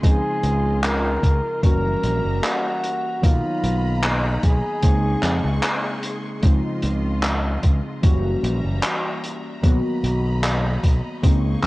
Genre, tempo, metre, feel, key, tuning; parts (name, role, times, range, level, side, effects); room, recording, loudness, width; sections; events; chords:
vaporwave; 75 BPM; 4/4; straight; A4 = 441 Hz
breathy flugelhorn; melody; 0.0-6.0 s; Eb4 to Bb4; -26 LUFS; equal; tape echo
warbly lo-fi synth keys; accompaniment; 0.0-11.7 s; Db3 to Gb4; -26 LUFS; equal; wide subtle chorus, tape echo
bright studio string section; sustained chords; 0.0-11.7 s; G3 to Db6; -35 LUFS; left 1 dB
growling fingered electric bass; bass; 0.0-11.7 s; Gb1 to F2; -22 LUFS; equal; overdrive, tube saturation
crunchy breakbeat drum kit; drums; 0.0-11.7 s; handclaps, hi-hat; -25 LUFS; equal; vintage 12-bit sampler grit
electronic kick drum; drums; 0.0-11.4 s; -16 LUFS; equal; vintage 12-bit sampler grit
light reverb, studio reverb; worn, warbling old tape, cassette tape, warbly pitch drift; -18 LUFS; side -20 dB against mid
0.0-11.7 A section
0.0 Dbmaj9; 1.6 Gb7b9; 3.2 Cbmaj7; 4.8 Bbm11/Db; 6.4 Dbmaj9; 8.0 Gb7b9; 9.6 Cbmaj7